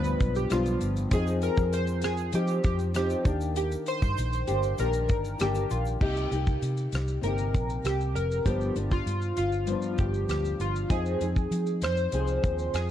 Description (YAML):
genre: indie pop, bedroom pop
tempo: 98 BPM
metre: 4/4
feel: straight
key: unclear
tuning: A4 = 440 Hz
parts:
  - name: chorused retro synth keys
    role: melody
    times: 0.0-12.9 s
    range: F4 to C5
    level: -31 LUFS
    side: equal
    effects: tremolo, analog chorus
  - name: nylon-string guitar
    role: accompaniment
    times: 0.0-12.9 s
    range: G2 to Ab4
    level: -32 LUFS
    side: left 2 dB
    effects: analog chorus, vibrato effect
  - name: vintage muted fingered electric bass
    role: bass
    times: 0.0-12.9 s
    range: F1 to F3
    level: -29 LUFS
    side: equal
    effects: none
  - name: damped 70s drum kit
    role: drums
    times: 0.0-12.9 s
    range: crash cymbal, hi-hat, kick drum, rim click, shaker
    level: -29 LUFS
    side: equal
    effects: none
  - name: egg shaker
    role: percussion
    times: 0.1-6.0 s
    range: none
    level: -55 LUFS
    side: right 8 dB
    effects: none
room: light reverb, small room ambience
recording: dark, warm production, lossy compression artefacts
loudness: -25 LUFS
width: side -11 dB against mid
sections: 0.0-6.0 A section; 6.0-12.9 B section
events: none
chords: 0.0 G7; 1.1 Fm7; 3.3 Ebmaj7; 6.0 Cm7; 8.5 G7; 10.9 Fm7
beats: 0.51 | 1.12 1.73 2.34 2.95 | 3.56 4.17 4.79 5.40 | 6.01 6.62 7.23 7.84 | 8.45 9.07 9.68 10.29 | 10.90 11.51 12.12 12.74